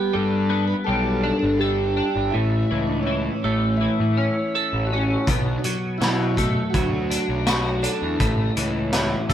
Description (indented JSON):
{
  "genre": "psychedelic rock",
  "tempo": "82 BPM",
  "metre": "4/4",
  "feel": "straight",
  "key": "unclear",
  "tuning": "A4 = 440 Hz",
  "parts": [
    { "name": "combo organ", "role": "melody", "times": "0.0-8.5 s", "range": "C#4 to B4", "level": "-27 LUFS", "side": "right 2 dB", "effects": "phaser" },
    { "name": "twelve-string electric guitar", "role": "riff", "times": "0.0-9.3 s", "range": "A2 to A4", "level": "-23 LUFS", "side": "left 1 dB", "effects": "rotary speaker" },
    { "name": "fuzz picked electric bass", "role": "bass", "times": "0.2-9.3 s", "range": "G1 to B2", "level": "-24 LUFS", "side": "equal", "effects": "overdrive" },
    { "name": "vintage drum kit", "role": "drums", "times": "5.3-9.3 s", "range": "hi-hat, kick drum, snare drum", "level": "-24 LUFS", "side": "equal", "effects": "none" }
  ],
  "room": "moderate studio ambience, RT60 0.5 s",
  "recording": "band playing live in one room",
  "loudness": "-19 LUFS",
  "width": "side -10 dB against mid",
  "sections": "0.0-9.3 A section",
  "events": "none",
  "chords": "0.0 Gadd9; 2.3 A; 5.3 Bm7; 8.2 A"
}